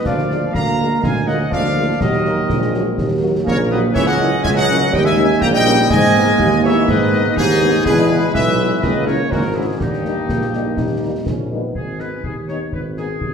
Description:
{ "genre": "military-style march for wind band", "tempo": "123 BPM", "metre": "2/4", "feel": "straight", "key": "Eb minor, G# minor from 4.0 s", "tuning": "A4 = 441 Hz", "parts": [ { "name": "clear euphonium", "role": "second line", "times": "0.0-11.2 s", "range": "G2 to Bb3", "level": "-23 LUFS", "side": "right 2 dB", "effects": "none" }, { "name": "warm tuba", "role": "bass", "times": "0.0-13.3 s", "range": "G#1 to G#2", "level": "-19 LUFS", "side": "right 1 dB", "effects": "none" }, { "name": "warm trumpet section", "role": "melody", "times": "0.1-13.1 s", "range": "D#4 to Bb5", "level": "-21 LUFS", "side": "equal", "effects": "none" }, { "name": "clear woodwind section", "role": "second line", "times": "0.1-13.3 s", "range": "D#4 to G5", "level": "-23 LUFS", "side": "left 2 dB", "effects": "none" }, { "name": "warm trombone section", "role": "sustained chords", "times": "0.1-11.7 s", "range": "Gb3 to D#4", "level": "-24 LUFS", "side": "right 2 dB", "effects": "none" }, { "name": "concert snare drum, clash cymbals and concert bass drum", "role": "drums", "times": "0.1-13.3 s", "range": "none", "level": "-23 LUFS", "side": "left 1 dB", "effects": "none" }, { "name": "mellow French horn section", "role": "accompaniment", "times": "0.3-13.1 s", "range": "D#3 to Gb4", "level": "-26 LUFS", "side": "left 3 dB", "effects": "none" } ], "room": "wet recital hall reverb, RT60 1.3 s", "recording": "recorded in a church or concert hall", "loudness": "-14 LUFS", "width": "side -6 dB against mid", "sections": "0.0-11.7 A section; 11.7-13.3 B section", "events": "none", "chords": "0.1 Bb7/D; 2.0 Ebm; 4.0 A#dim/C#; 4.9 D#5; 5.9 G#m; 7.9 E; 8.8 C#m; 9.8 D#; 11.7 G#m", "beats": "| 0.05 0.54 | 1.03 1.51 | 2.00 2.49 | 2.98 3.46 | 3.95 4.44 | 4.93 5.41 | 5.90 6.39 | 6.88 7.36 | 7.85 8.34 | 8.82 9.31 | 9.80 10.29 | 10.77 11.26 | 11.75 12.24 | 12.72 13.21" }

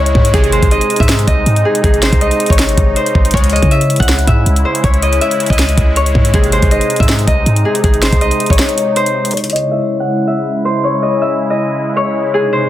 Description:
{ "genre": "hip hop, trap", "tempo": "160 BPM", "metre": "4/4", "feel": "half-time", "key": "C# harmonic minor", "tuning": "A4 = 438 Hz", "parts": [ { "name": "Celtic harp", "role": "melody", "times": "0.0-12.7 s", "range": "G#4 to F#5", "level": "-15 LUFS", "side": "left 2 dB", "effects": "low-pass filter" }, { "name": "sweeping resonant pad", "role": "sustained chords", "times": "0.0-12.7 s", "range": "B#2 to E4", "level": "-19 LUFS", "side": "right 1 dB", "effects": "chorus, low-pass filter" }, { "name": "clean 808-style bass", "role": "bass", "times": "0.0-8.6 s", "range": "G#1 to C#3", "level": "-14 LUFS", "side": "equal", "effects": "none" }, { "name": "trap drum kit", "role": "drums", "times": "0.1-9.6 s", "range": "hi-hat, kick drum, snare drum", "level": "-13 LUFS", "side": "equal", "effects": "none" }, { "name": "chorused polysynth", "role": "stabs", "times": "0.3-0.6, 3.3-3.6, 6.3-6.6 s", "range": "D#2 to G#3", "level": "-20 LUFS", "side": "right 1 dB", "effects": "none" } ], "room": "digital ambience", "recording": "dense, heavily limited modern master", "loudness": "-10 LUFS", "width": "side -13 dB against mid", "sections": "0.0-9.3 A section; 9.3-12.7 B section", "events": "kick muted 8.6-9.3; filter sweep 9.3-12.7", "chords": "0.3 G#; 3.3 C#m; 6.3 G#; 9.3 C#m", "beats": "| 0.34 0.71 1.09 1.46 | 1.84 2.21 2.59 2.96 | 3.34 3.71 4.09 4.46 | 4.84 5.21 5.59 5.96 | 6.34 6.71 7.09 7.46 | 7.84 8.21 8.59 8.96 | 9.34 9.71 10.09 10.46 | 10.84 11.21 11.59 11.96 | 12.34" }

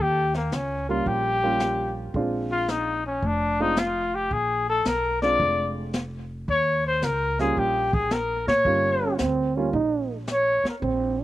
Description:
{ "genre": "jazz, small-group swing and bop", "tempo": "111 BPM", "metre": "4/4", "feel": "swing 67% on 8ths", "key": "unclear", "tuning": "A4 = 438 Hz", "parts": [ { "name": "warm trumpet", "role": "melody", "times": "0.0-10.8 s", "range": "Bb3 to D5", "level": "-23 LUFS", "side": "left 2 dB", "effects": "slapback echo" }, { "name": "upright bass", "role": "bass", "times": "0.0-11.2 s", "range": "F1 to Bb2", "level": "-30 LUFS", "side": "equal", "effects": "none" }, { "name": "jazz brush drum kit", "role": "drums", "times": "0.3-11.2 s", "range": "brushed snare drum, hi-hat, kick drum, snare drum", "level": "-29 LUFS", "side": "equal", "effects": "none" }, { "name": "dark grand piano", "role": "accompaniment", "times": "0.9-9.7 s", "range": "G3 to F4", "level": "-28 LUFS", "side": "right 3 dB", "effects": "none" }, { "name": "dark trombone", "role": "second line", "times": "9.0-11.2 s", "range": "C4 to Eb4", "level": "-24 LUFS", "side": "right 5 dB", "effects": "slapback echo" } ], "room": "little or no reverb", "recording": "recorded outdoors, with no room sound", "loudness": "-22 LUFS", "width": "side -14 dB against mid", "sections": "0.0-11.2 A section", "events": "none", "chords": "0.0 Eb9; 2.1 Bb9; 6.5 Eb9 (rootless)", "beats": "0.52 1.06 1.60 | 2.15 2.69 3.23 3.77 | 4.32 4.86 5.40 5.94 | 6.49 7.03 7.57 8.12 | 8.66 9.20 9.74 10.29 | 10.83" }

